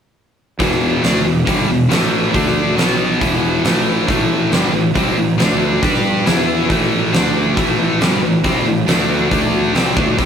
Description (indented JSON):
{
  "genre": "hard rock",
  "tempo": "138 BPM",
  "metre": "4/4",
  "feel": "straight",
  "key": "unclear",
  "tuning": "A4 = 440 Hz",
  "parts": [
    { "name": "scooped high-gain guitar", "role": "riff", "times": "0.6-10.3 s", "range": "E2 to G4", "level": "-19 LUFS", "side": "right 6 dB", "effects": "distortion" },
    { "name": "tight distorted guitar", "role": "riff", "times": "0.6-10.3 s", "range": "E2 to G4", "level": "-19 LUFS", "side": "left 7 dB", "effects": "distortion" },
    { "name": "fuzz fingered electric bass", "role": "bass", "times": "0.6-10.3 s", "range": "E1 to G2", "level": "-21 LUFS", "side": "equal", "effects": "overdrive" },
    { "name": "huge arena drum kit", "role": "drums", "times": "0.6-10.3 s", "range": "hi-hat, kick drum, snare drum", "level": "-17 LUFS", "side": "equal", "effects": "none" }
  ],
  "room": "light reverb",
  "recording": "rough rehearsal-room recording",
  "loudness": "-13 LUFS",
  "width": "side -8 dB against mid",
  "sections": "0.6-10.3 A section",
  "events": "none",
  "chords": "0.6 E5; 1.9 A5; 2.3 D5; 2.8 B5; 3.2 E5; 3.6 A5; 5.4 D5; 5.8 G5; 6.3 E5; 6.7 A5; 7.1 D5; 7.6 A5; 8.9 D5; 9.7 A5"
}